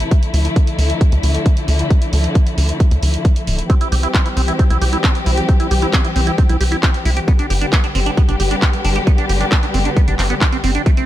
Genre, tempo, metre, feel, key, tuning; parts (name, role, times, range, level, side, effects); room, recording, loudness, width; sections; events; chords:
uplifting trance; 134 BPM; 4/4; straight; A4 = 439 Hz
warm symphonic string section; sustained chords; 0.0-11.1 s; C3 to G4; -22 LUFS; left 2 dB; sidechain pumping, low-pass filter
tight sequencer bass; bass; 0.0-10.8 s; D1 to D2; -16 LUFS; equal; sidechain pumping
punchy analog drum machine; drums; 0.0-11.1 s; handclaps, hi-hat; -23 LUFS; right 1 dB; sidechain pumping on hats
electronic kick drum; drums; 0.1-11.0 s; -13 LUFS; equal
liquid acid bass; arpeggios; 3.7-11.0 s; A3 to G4; -23 LUFS; right 4 dB; phaser, cassette tape, sidechain pumping, digital delay
little or no reverb; -13 LUFS; side -13 dB against mid
0.0-11.1 A section
0.1 Dmadd9; 3.7 C; 7.3 G